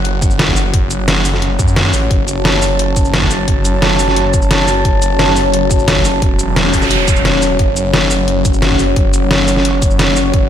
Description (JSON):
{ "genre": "dark technical drum and bass", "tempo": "175 BPM", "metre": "4/4", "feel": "straight", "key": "F# minor", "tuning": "A4 = 441 Hz", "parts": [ { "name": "dark analog pad", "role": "sustained chords", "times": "0.0-10.5 s", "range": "F#3 to A5", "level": "-16 LUFS", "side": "left 1 dB", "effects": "chorus, phaser, sidechain pumping" }, { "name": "snarling distorted saw bass", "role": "bass", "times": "0.0-10.5 s", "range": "E1 to F#2", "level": "-17 LUFS", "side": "equal", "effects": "distortion, sidechain pumping" }, { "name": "dubstep drum kit", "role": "drums", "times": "0.1-10.4 s", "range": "hi-hat, shaker, snare drum", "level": "-16 LUFS", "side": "equal", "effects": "none" }, { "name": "electronic kick drum", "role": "drums", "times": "0.2-10.4 s", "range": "none", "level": "-15 LUFS", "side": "equal", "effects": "none" }, { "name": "noise sweep", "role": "sound effects", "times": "6.4-7.6 s", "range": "none", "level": "-20 LUFS", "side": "right 4 dB", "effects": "none" } ], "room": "moderate lush hall reverb, RT60 1.9 s, digital ambience", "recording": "dreamy mix soaked in reverb", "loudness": "-10 LUFS", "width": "side -10 dB against mid", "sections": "0.0-10.5 A section", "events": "noise sweep 6.4-7.6; kick drops out 7.2-7.6", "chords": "0.0 F#5", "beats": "0.05 0.39 | 0.73 1.08 1.42 1.76 | 2.11 2.45 2.79 3.13 | 3.48 3.82 4.16 4.51 | 4.85 5.19 5.54 5.88 | 6.22 6.56 6.91 7.25 | 7.59 7.93 8.28 8.62 | 8.96 9.31 9.65 9.99 | 10.34" }